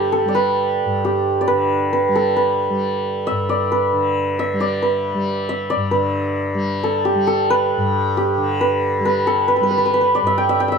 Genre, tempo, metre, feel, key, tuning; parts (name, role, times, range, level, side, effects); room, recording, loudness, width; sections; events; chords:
indian classical, Hindustani; 135 BPM; 4/4; straight; G raga bhupali; A4 = 439 Hz
santur; melody; 0.0-10.8 s; G4 to G5; -17 LUFS; right 1 dB
tanpura; drone; 0.0-10.8 s; G2 to G3; -24 LUFS; left 1 dB
light reverb; close, detailed microphones; -16 LUFS; side -5 dB against mid
0.0-5.9 A section; 5.9-10.8 B section